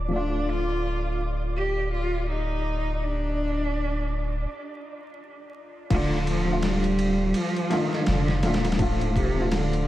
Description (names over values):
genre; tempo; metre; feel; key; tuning
trip hop; 83 BPM; 4/4; swing 59% on 16ths; D phrygian; A4 = 441 Hz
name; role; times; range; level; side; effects
dark upright piano; accompaniment; 0.0-9.9 s; F3 to D5; -29 LUFS; left 2 dB; harmonic tremolo, tape echo
warbly tape-like pad; sustained chords; 0.0-5.9 s; F4 to D6; -44 LUFS; right 1 dB; none
soft dub sub bass; bass; 0.0-9.8 s; D1 to F1; -28 LUFS; equal; none
flickering grainy texture; texture; 0.0-4.5 s; D5; -41 LUFS; right 2 dB; built-in reverb
warm cello; melody; 0.1-9.9 s; A2 to G4; -28 LUFS; equal; dub echo
boom bap sampler-style drum kit; drums; 5.9-9.9 s; crash cymbal, kick drum, ride cymbal, snare drum; -28 LUFS; equal; overdrive
room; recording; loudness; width
moderate plate reverb, RT60 2.7 s; dreamy mix soaked in reverb, vinyl crackle; -23 LUFS; side -14 dB against mid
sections
0.0-5.9 A section; 5.9-9.9 B section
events
break 4.5-5.9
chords
0.0 Dm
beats
| 0.12 0.84 1.56 2.28 | 3.01 3.73 4.45 5.18 | 5.90 6.62 7.34 8.07 | 8.79 9.51